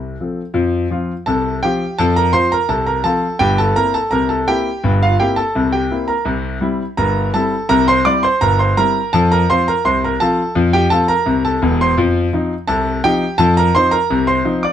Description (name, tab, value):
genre	ragtime piano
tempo	84 BPM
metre	2/4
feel	straight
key	F major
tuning	A4 = 440 Hz
part	warm concert grand piano	solo	0.0-14.7 s	E1 to D6	-13 LUFS	equal	none
room	light reverb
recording	none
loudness	-13 LUFS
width	side -10 dB against mid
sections	0.6-14.7 A section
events	none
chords	0.0 F; 3.4 C7/G; 6.3 C7; 9.1 F; 12.0 F7